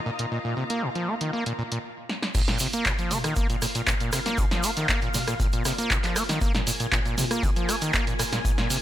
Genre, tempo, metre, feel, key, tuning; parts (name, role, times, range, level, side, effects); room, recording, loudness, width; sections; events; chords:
acid house; 118 BPM; 4/4; straight; A4 = 439 Hz
string machine, full ensemble; sustained chords; 0.0-8.8 s; Bb3 to Ab5; -35 LUFS; equal; ensemble chorus, sidechain pumping
rich symphonic string section; texture; 0.0-1.8 s; Bb3 to Bb5; -37 LUFS; left 1 dB; sidechain pumping
overdriven acid bass; riff; 0.1-8.8 s; Bb2 to Bb3; -28 LUFS; equal; distortion, sidechain pumping, tape echo
punchy analog drum machine; drums; 0.2-8.8 s; crash cymbal, handclaps, hi-hat, ride cymbal, rim click, snare drum, toms; -27 LUFS; equal
crunchy breakbeat drum kit; drums; 2.3-8.8 s; hi-hat, snare drum; -40 LUFS; equal
electronic kick drum; drums; 2.3-8.6 s; -27 LUFS; equal; overdrive
egg shaker; percussion; 2.4-8.8 s; -35 LUFS; right 4 dB
small room reverb; -23 LUFS; side -12 dB against mid
0.0-2.3 A section; 2.3-8.8 B section
stop 1.8-2.3; drum fill 2.1; drop 2.3-8.8
0.0 Bb5